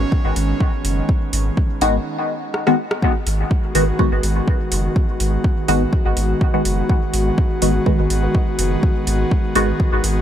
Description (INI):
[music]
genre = dub techno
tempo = 124 BPM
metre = 4/4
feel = swing 53% on 16ths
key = G# minor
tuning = A4 = 440 Hz
[part]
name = airy breathy pad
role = sustained chords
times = 0.0-10.2 s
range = D#3 to F#4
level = -23 LUFS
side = equal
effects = chorus, sidechain pumping
[part]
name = pure sine sub bass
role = bass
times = 0.0-10.2 s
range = F#1 to G#1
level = -20 LUFS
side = equal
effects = tube saturation, sidechain pumping
[part]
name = metallic inharmonic drone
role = texture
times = 0.0-2.1 s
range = D#4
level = -35 LUFS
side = right 2 dB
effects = chorus, built-in reverb, sidechain pumping
[part]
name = electronic kick drum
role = drums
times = 0.1-9.9 s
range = none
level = -18 LUFS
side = equal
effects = overdrive, small room ambience
[part]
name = deep house drum kit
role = drums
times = 0.4-10.1 s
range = hi-hat, rim click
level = -26 LUFS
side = right 1 dB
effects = overdrive, small room ambience
[part]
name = filtered dub chord stab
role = stabs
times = 1.8-9.7 s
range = D#3 to F#4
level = -21 LUFS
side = left 1 dB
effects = phaser, sidechain pumping, dub echo
[sound]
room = little or no reverb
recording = none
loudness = -16 LUFS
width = side -10 dB against mid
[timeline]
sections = 0.0-3.0 A section; 3.0-10.2 A section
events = drum fill 2.5-3.0; band accent 2.9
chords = 0.0 G#m7